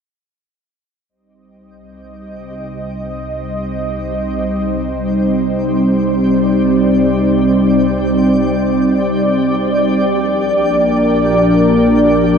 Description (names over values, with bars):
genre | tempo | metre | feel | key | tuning
ambient, sequencer-driven space music | free time | none | none | unclear | A4 = 440 Hz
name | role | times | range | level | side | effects
lush unison pad | sustained chords | 2.3-12.4 s | F3 to Eb5 | -13 LUFS | equal | chorus
analog drone | bass | 2.0-12.4 s | Bb1 to C2 | -27 LUFS | equal | chorus
twinkling granular texture | texture | 2.5-12.4 s | G4 to G5 | -26 LUFS | left 2 dB | built-in reverb
room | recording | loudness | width
wet plate reverb, RT60 2.8 s | dark, warm production | -12 LUFS | side -6 dB against mid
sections
1.1-12.4 A section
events
fade-in on synth drone 1.1-12.4; fade-in on synth texture 1.1-12.4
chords
1.1 Cm; 10.1 Bb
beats
free time